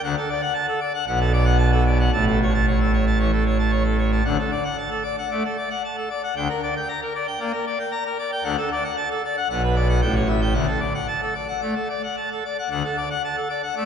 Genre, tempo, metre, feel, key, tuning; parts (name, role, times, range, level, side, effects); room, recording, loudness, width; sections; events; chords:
classical, organ toccata; 114 BPM; 4/4; straight; D major; A4 = 435 Hz
pipe organ, full organ; solo; 0.0-13.9 s; A1 to Bb5; -20 LUFS; equal
wet church reverb, RT60 3.4 s; minimal, uncompressed stereo recording; -20 LUFS; side -8 dB against mid
0.0-12.7 A section; 12.7-13.9 A section
0.0 D; 1.1 Bm7; 2.1 A; 4.3 D; 6.4 Gm/D; 8.5 D; 9.5 Bm; 10.0 A7; 10.6 D